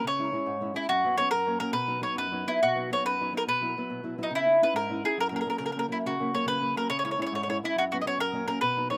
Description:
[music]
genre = italian folk, Italian serenade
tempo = 140 BPM (dotted quarters)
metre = 6/8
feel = rubato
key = B major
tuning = A4 = 441 Hz
[part]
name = mandolin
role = melody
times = 0.0-9.0 s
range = D#4 to D#5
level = -29 LUFS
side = equal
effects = slapback echo
[part]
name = nylon-string guitar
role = accompaniment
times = 0.0-9.0 s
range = F#2 to E4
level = -36 LUFS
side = equal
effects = none
[sound]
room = little or no reverb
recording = recorded outdoors, with no room sound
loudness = -28 LUFS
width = mono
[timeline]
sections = 0.0-2.6 A section; 2.6-9.0 A section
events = none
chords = 0.0 C#m; 0.9 F#sus4; 1.3 F#; 1.7 B; 3.5 Esus2/B; 4.3 C#madd9; 5.2 F#; 6.9 C#m; 7.8 F#sus4; 8.2 F#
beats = | 0.03 0.46 | 0.89 1.31 | 1.74 2.17 | 2.62 3.05 | 3.48 3.90 | 4.32 4.75 | 5.18 5.61 | 6.05 6.48 | 6.91 7.34 | 7.77 8.19 | 8.62

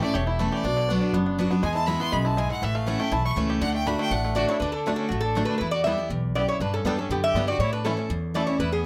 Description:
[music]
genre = bluegrass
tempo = 242 BPM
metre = 4/4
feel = straight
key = D major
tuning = A4 = 440 Hz
[part]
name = clear fiddle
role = second line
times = 0.0-8.9 s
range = A3 to C#6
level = -33 LUFS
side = equal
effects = none
[part]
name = picked steel-string acoustic guitar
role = accompaniment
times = 0.0-8.9 s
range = E2 to G4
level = -29 LUFS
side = equal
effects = none
[part]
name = bluegrass banjo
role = arpeggios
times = 0.0-8.4 s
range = D3 to G4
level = -33 LUFS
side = equal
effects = slapback echo
[part]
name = upright bass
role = bass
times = 0.1-8.9 s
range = E1 to A2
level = -32 LUFS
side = equal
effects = none
[part]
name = lap resonator guitar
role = melody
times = 4.4-8.9 s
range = F#4 to E5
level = -29 LUFS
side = equal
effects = none
[sound]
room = light reverb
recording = close, detailed microphones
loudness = -25 LUFS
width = mono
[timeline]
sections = 0.0-4.6 A section; 4.6-8.9 B section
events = fiddle solo 0.0-4.6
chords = 0.0 A; 0.6 Bm; 1.6 E; 2.6 A; 3.6 D; 5.6 Em; 6.6 G; 7.6 A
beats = 0.15 0.40 | 0.65 0.89 1.14 1.39 | 1.64 1.88 2.13 2.38 | 2.63 2.87 3.12 3.37 | 3.62 3.87 4.11 4.36 | 4.61 4.86 5.11 5.36 | 5.61 5.85 6.10 6.35 | 6.60 6.85 7.10 7.35 | 7.60 7.85 8.10 8.35 | 8.60 8.85

